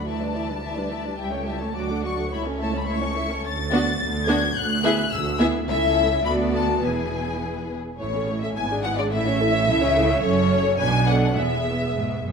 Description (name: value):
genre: quick classical-period movement for string orchestra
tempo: 107 BPM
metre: 2/4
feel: straight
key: A major from 3.4 s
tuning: A4 = 440 Hz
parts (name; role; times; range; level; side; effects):
- rich studio violin section; melody; 0.0-12.2 s; C#5 to A6; -26 LUFS; left 4 dB; none
- warm studio violin section; second line; 0.0-12.2 s; F#4 to G#5; -29 LUFS; left 3 dB; none
- warm studio viola section; accompaniment; 0.0-12.3 s; E3 to C#5; -26 LUFS; right 1 dB; none
- rich studio cello section; bass; 0.0-12.3 s; C#2 to C#3; -28 LUFS; right 3 dB; none
- warm studio double bass section; bass; 0.0-12.3 s; E1 to D2; -28 LUFS; right 4 dB; none
room: moderate concert hall reverb, RT60 1.7 s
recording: none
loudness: -20 LUFS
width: side -6 dB against mid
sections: 0.0-8.0 A section; 8.0-12.3 B section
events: none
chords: 0.1 Em7/D; 1.2 A7/C#; 1.8 D; 2.3 A/C#; 3.4 Bm7/D; 4.6 E7/D; 5.7 A/C#; 6.3 Bm7/D; 6.8 E; 8.0 A; 8.6 E7/G#; 9.1 A; 9.7 A/C#; 10.2 F#m; 10.8 Bm; 11.4 E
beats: | 0.07 0.64 | 1.20 1.76 | 2.32 2.88 | 3.45 4.01 | 4.57 5.12 | 5.68 6.25 | 6.83 7.41 | 7.99 8.56 | 9.12 9.68 | 10.24 10.80 | 11.37 11.94